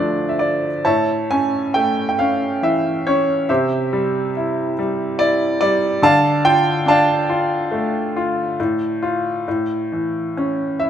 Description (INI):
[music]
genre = classical, lyrical solo piano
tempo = 70 BPM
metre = 3/4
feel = uneven beats, rubato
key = D minor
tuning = A4 = 440 Hz
[part]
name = bright upright piano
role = solo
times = 0.0-10.9 s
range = D2 to A5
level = -16 LUFS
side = equal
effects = none
[sound]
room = moderate scoring stage reverb, RT60 1.9 s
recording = minimal, uncompressed stereo recording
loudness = -16 LUFS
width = side -9 dB against mid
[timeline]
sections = 0.9-10.9 A section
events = none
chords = 0.0 Dm; 0.9 A; 3.5 C; 6.0 Dm; 8.6 Dm/A; 9.5 A